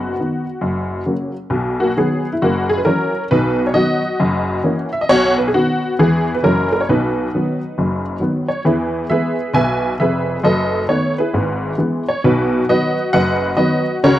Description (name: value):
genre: jazz, stride piano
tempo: 134 BPM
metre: 4/4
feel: swing 65% on 8ths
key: B major, E major from 8.7 s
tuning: A4 = 440 Hz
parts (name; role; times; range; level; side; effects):
- honky-tonk upright piano; solo; 0.0-14.2 s; F1 to G#5; -15 LUFS; equal; none
room: studio ambience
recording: dry, close 1970s-style studio recording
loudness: -15 LUFS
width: side -13 dB against mid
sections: 0.0-8.7 A section; 8.7-14.2 B section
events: none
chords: 0.0 B/F#; 0.6 F#; 1.5 B; 2.4 F#7; 3.3 B; 4.2 F#7; 5.1 B; 6.0 E; 6.4 F#7; 6.9 B; 8.7 E; 10.4 B7/F#; 11.3 E/G#; 12.2 B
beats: 0.18 0.63 1.07 | 1.52 1.96 2.41 2.85 | 3.30 3.75 4.19 4.64 | 5.08 5.53 5.97 6.42 | 6.87 7.31 7.76 8.21 | 8.65 9.10 9.55 9.99 | 10.44 10.89 11.33 11.78 | 12.23 12.67 13.12 13.57 | 14.01